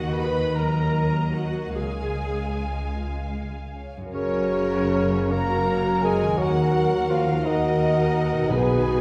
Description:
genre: classical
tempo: 49-58 BPM (dotted quarters)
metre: 6/8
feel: rubato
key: F# major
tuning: A4 = 441 Hz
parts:
  - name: rich chamber violin section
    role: melody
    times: 0.0-9.0 s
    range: B4 to B5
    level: -38 LUFS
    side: equal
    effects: none
  - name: rich symphonic violin section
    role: second line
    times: 0.0-9.0 s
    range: A#4 to G#5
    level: -37 LUFS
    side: equal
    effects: none
  - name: warm chamber viola section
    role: accompaniment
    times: 0.0-9.0 s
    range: D#4 to B4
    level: -33 LUFS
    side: equal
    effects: none
  - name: concert harp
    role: arpeggios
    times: 0.0-9.0 s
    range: F#2 to C#5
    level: -34 LUFS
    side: equal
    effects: none
  - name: rich chamber double bass section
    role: bass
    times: 0.0-9.0 s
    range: F#1 to D#2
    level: -29 LUFS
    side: equal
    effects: none
  - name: rich studio cello section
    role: bass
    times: 0.0-9.0 s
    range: D#2 to G#3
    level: -35 LUFS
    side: equal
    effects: none
  - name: mellow cor anglais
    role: second line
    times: 4.1-9.0 s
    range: B3 to A#4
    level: -34 LUFS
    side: equal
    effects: none
  - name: mellow hollow silver concert flute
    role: second line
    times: 4.1-9.0 s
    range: B4 to A#5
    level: -32 LUFS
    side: equal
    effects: none
  - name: dark bassoon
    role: accompaniment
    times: 4.1-9.0 s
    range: B2 to A#3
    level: -28 LUFS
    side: equal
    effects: none
  - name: dark French horn section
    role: sustained chords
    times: 4.2-9.0 s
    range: F#4 to B4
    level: -32 LUFS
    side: equal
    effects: none
  - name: timpani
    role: percussion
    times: 8.5-9.0 s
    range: B2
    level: -29 LUFS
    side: equal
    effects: none
room: wet scoring stage reverb, RT60 1.6 s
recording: heard from further back in the room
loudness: -23 LUFS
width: mono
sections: 0.0-4.1 A section; 4.1-9.0 B section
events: none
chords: 0.0 D#m; 1.7 C#; 4.1 F#; 6.4 D#m; 8.5 G#m/B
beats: 0.56 | 1.74 2.95 | 4.13 5.32 | 6.39 7.46 | 8.50

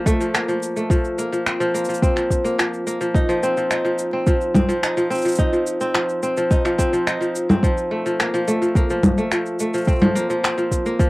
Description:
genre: folktronica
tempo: 107 BPM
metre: 4/4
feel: straight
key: unclear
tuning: A4 = 441 Hz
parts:
  - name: kora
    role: arpeggios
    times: 0.0-11.1 s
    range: F3 to Eb4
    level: -20 LUFS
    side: equal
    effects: cassette tape, analog delay
  - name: electronic cabasa, finger snaps and congas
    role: drums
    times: 0.1-11.1 s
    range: none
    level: -21 LUFS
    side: equal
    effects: cassette tape
  - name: electronic kick drum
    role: drums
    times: 0.1-11.1 s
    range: none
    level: -19 LUFS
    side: equal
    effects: cassette tape
room: light reverb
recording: home recording on cassette, vinyl crackle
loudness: -17 LUFS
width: side -20 dB against mid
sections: 0.0-11.1 A section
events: none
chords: 0.0 Fadd11; 3.1 F5; 7.6 Fadd11; 9.9 Bbsus2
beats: 0.34 | 0.91 1.47 2.03 2.59 | 3.15 3.71 4.27 4.83 | 5.39 5.95 6.51 7.07 | 7.63 8.20 8.76 9.32 | 9.88 10.44 11.00

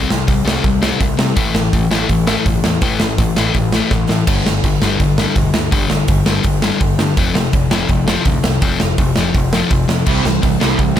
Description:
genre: punk rock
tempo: 166 BPM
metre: 4/4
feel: straight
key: unclear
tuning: A4 = 440 Hz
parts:
  - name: sludgy distorted guitar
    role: riff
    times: 0.0-11.0 s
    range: F2 to C4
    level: -17 LUFS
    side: left 5 dB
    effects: overdrive
  - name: growling picked electric bass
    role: bass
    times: 0.0-11.0 s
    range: E1 to C3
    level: -22 LUFS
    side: right 1 dB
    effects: overdrive
  - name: big rock drum kit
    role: drums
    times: 0.1-11.0 s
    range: crash cymbal, hi-hat, kick drum, snare drum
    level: -16 LUFS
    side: right 1 dB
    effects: none
  - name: distorted electric guitar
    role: riff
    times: 10.1-11.0 s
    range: C3 to G3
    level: -18 LUFS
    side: right 14 dB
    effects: distortion
room: little or no reverb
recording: none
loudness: -13 LUFS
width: side -10 dB against mid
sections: 0.0-11.0 A section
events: drum fill 3.9-4.3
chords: 0.0 C5; 1.4 A5; 4.3 G5; 7.2 F5; 10.1 C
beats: 0.28 0.64 1.01 | 1.37 1.73 2.10 2.46 | 2.82 3.19 3.55 3.91 | 4.27 4.64 5.00 5.36 | 5.72 6.09 6.45 6.81 | 7.17 7.54 7.90 8.26 | 8.62 8.98 9.35 9.71 | 10.07 10.43 10.79

